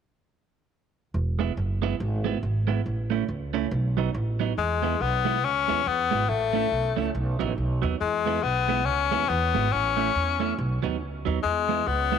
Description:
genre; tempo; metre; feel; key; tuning
ska; 140 BPM; 4/4; swing 60% on 8ths; E major; A4 = 444 Hz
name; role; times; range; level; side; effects
upright bass; bass; 1.1-12.2 s; E1 to E2; -28 LUFS; right 1 dB; none
clean electric guitar; accompaniment; 1.4-12.2 s; F#3 to E4; -30 LUFS; right 13 dB; none
edgy tenor saxophone; melody; 4.6-12.2 s; G#3 to C#4; -25 LUFS; left 8 dB; none
room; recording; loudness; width
light reverb, small room ambience; 1960s-style stereo with parts hard left and right; -23 LUFS; side -7 dB against mid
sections
1.1-4.6 A section; 4.6-12.2 B section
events
none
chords
1.1 E; 2.9 A; 3.7 B; 4.6 E; 6.3 A; 7.1 B; 8.0 E; 9.7 A; 10.6 B; 11.4 E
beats
| 1.14 1.57 2.00 2.42 | 2.85 3.28 3.71 4.14 | 4.57 5.00 5.42 5.85 | 6.28 6.71 7.14 7.57 | 8.00 8.43 8.86 9.29 | 9.72 10.14 10.57 11.00 | 11.43 11.86

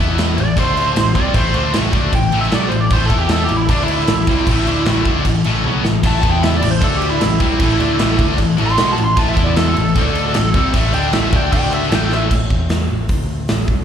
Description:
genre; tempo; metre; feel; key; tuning
hard rock; 153 BPM; 4/4; straight; A minor; A4 = 440 Hz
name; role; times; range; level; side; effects
high-gain distorted guitar; riff; 0.0-12.3 s; A2 to E4; -21 LUFS; left 12 dB; distortion
high-gain distorted guitar; riff; 0.0-12.3 s; A2 to E4; -24 LUFS; right 11 dB; distortion
picked electric bass; bass; 0.0-13.8 s; A1 to E2; -20 LUFS; equal; none
big rock drum kit; drums; 0.2-13.8 s; crash cymbal, hi-hat, kick drum, snare drum, toms; -18 LUFS; equal; none
biting lead guitar; melody; 0.4-12.3 s; D4 to C6; -20 LUFS; right 2 dB; overdrive, plate reverb, slapback echo, digital delay
overdriven electric guitar; riff; 6.0-12.3 s; A2 to E4; -24 LUFS; right 2 dB; slapback echo
room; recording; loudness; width
light reverb; live gig heard through the venue's PA, club reverb; -13 LUFS; side -8 dB against mid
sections
0.0-12.3 A section; 12.3-13.8 B section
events
lead electric guitar solo 0.0-12.3; drum fill 5.7-6.0, 12.1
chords
0.0 E5; 0.4 A5; 0.6 D5; 1.0 Am; 3.1 E5; 3.5 A5; 3.7 D5; 4.1 Am; 6.2 E5; 6.6 Am; 6.8 D5; 7.2 Am; 9.4 E5; 9.8 A5; 10.0 D5; 10.4 Am; 11.5 D5; 11.9 A5; 12.3 N.C.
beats
0.18 0.57 0.96 | 1.35 1.74 2.13 2.52 | 2.91 3.31 3.70 4.09 | 4.48 4.87 5.26 5.65 | 6.04 6.43 6.83 7.22 | 7.61 8.00 8.39 8.79 | 9.18 9.57 9.96 10.35 | 10.74 11.14 11.53 11.92 | 12.31 12.71 13.10 13.49

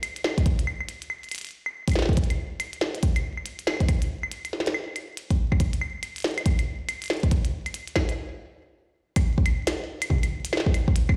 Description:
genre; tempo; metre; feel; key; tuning
IDM; 140 BPM; 4/4; swing 62% on 16ths; none; none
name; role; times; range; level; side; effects
glitchy drum kit; drums; 0.0-11.2 s; claves, hi-hat, snare drum, toms; -31 LUFS; equal; delay
electronic kick drum; drums; 0.4-11.2 s; none; -24 LUFS; equal; none
room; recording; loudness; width
light reverb; played on a big sound system in a bare room, stone room reverb; -27 LUFS; mono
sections
0.0-9.0 A section; 9.0-11.2 B section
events
stop 8.2-9.0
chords
none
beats
0.03 | 0.46 0.89 1.32 1.75 | 2.17 2.60 3.03 3.46 | 3.89 4.32 4.75 5.17 | 5.60 6.03 6.46 6.89 | 7.32 7.75 8.17 8.60 | 9.03 9.46 9.89 10.32 | 10.74

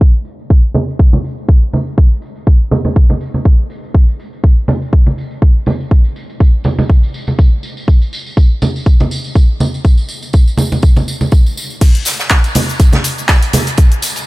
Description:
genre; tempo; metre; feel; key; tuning
house; 122 BPM; 4/4; swing 56% on 16ths; none; none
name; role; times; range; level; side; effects
electronic kick drum; drums; 0.0-13.9 s; none; -8 LUFS; equal; none
tambourine and congas; percussion; 0.0-14.2 s; none; -18 LUFS; right 1 dB; none
punchy analog drum machine; drums; 11.8-14.3 s; cabasa, crash cymbal, handclaps, hi-hat; -17 LUFS; left 1 dB; overdrive
vintage drum kit; drums; 11.8-14.3 s; hi-hat, snare drum; -22 LUFS; right 2 dB; high-pass filter on hats, high-pass filter on snare, high-pass filter on room
room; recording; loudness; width
studio ambience; low-pass filter; -10 LUFS; side -21 dB against mid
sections
0.0-11.8 A section; 11.8-14.3 B section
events
filter sweep 0.0-11.8; drop 11.8-14.3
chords
none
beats
| 0.01 0.50 0.99 1.49 | 1.98 2.47 2.96 3.45 | 3.94 4.44 4.93 5.42 | 5.91 6.40 6.90 7.39 | 7.88 8.37 8.86 9.36 | 9.85 10.34 10.83 11.32 | 11.81 12.31 12.80 13.29 | 13.78

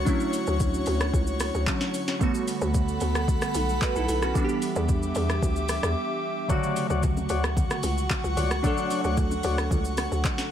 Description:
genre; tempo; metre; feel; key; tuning
amapiano; 112 BPM; 4/4; straight; D major; A4 = 440 Hz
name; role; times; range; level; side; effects
glassy digital keys; accompaniment; 0.0-10.5 s; C#3 to C#5; -29 LUFS; right 3 dB; chorus
airy breathy pad; sustained chords; 0.0-10.5 s; F#4 to D6; -31 LUFS; left 1 dB; chorus, sidechain pumping
hollow log drum bass; bass; 0.0-10.2 s; B1 to E2; -27 LUFS; equal; none
smooth R&B drum kit; drums; 0.1-10.5 s; handclaps, hi-hat, kick drum, rim click, shaker, snare drum; -28 LUFS; equal; overdrive
tonewheel organ; stabs; 6.5-9.6 s; C#5 to F#5; -31 LUFS; left 8 dB; overdrive, digital delay
congas and bongos; percussion; 6.5-10.4 s; none; -36 LUFS; left 2 dB; none
room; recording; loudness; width
digital ambience; none; -23 LUFS; side -10 dB against mid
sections
0.0-10.5 A section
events
break 6.0-6.5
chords
0.0 Dmaj7; 2.2 Gmaj9/D; 4.4 Em7; 6.5 Dmaj7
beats
| 0.07 0.60 1.14 1.67 | 2.21 2.75 3.28 3.82 | 4.35 4.89 5.42 5.96 | 6.50 7.03 7.57 8.10 | 8.64 9.17 9.71 10.24

